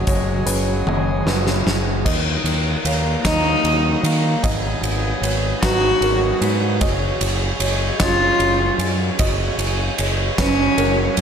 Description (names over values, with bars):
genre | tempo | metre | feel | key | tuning
post-rock | 50 BPM (dotted quarters) | 6/8 | straight | F# major | A4 = 440 Hz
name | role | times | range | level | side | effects
rich cello | melody | 0.0-11.1 s | F#3 to F#4 | -21 LUFS | equal | slapback echo
hand-pumped harmonium | sustained chords | 0.0-11.2 s | F#3 to A#5 | -30 LUFS | right 2 dB | none
electric guitar through a small old amp | arpeggios | 0.0-11.2 s | G#2 to G#4 | -26 LUFS | left 1 dB | slapback echo
felt-muted upright piano | arpeggios | 0.0-11.2 s | A#4 to D#5 | -30 LUFS | right 4 dB | slapback echo
growling fingered electric bass | bass | 0.0-11.2 s | F#1 to D#3 | -22 LUFS | equal | overdrive
huge arena drum kit | drums | 0.1-11.2 s | crash cymbal, hi-hat, kick drum, ride cymbal, snare drum, toms | -21 LUFS | equal | none
room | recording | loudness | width
moderate concert hall reverb, RT60 2.0 s, small room ambience | big arena sound | -16 LUFS | side -7 dB against mid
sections
0.0-2.1 A section; 2.1-11.2 B section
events
drum fill 0.9-2.1; build-up 2.1-11.2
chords
0.0 F#sus2; 2.1 D#m; 4.4 G#m7; 6.8 F#sus2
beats
0.88 | 2.07 3.26 | 4.45 5.63 | 6.82 8.01 | 9.20 10.39